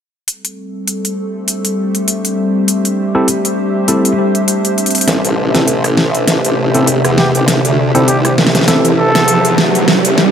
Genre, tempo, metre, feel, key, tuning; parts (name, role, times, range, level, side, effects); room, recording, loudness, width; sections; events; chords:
glitch hop; 100 BPM; 4/4; swing 56% on 16ths; A minor pentatonic; A4 = 440 Hz
warbly tape-like pad; sustained chords; 0.6-10.3 s; C3 to A4; -17 LUFS; equal; chorus, built-in reverb
pop drum kit; drums; 0.3-10.3 s; hi-hat, rim click, snare drum; -15 LUFS; equal; studio reverb
airy breathy pad; texture; 0.3-10.3 s; A3 to E5; -21 LUFS; right 1 dB; chorus
tine electric piano; stabs; 3.1-8.9 s; C4 to A4; -17 LUFS; equal; overdrive, tape echo
formant-sweep wobble bass; bass; 5.1-10.3 s; A1 to E2; -15 LUFS; equal; chorus, high-pass filter
riser; sound effects; 7.3-10.3 s; -19 LUFS; right 3 dB
mellow trumpet; melody; 7.2-9.6 s; G4 to A4; -18 LUFS; equal; low-pass filter, tape echo
light reverb, digital ambience; high-pass filter; -11 LUFS; side -8 dB against mid
0.3-5.1 A section; 5.1-10.3 B section
fade-in on analog synth pad 0.3-5.1; drum fill 4.8, 5.1-10.3; build-up 5.1-10.3; riser 7.3-10.3
0.3 Am7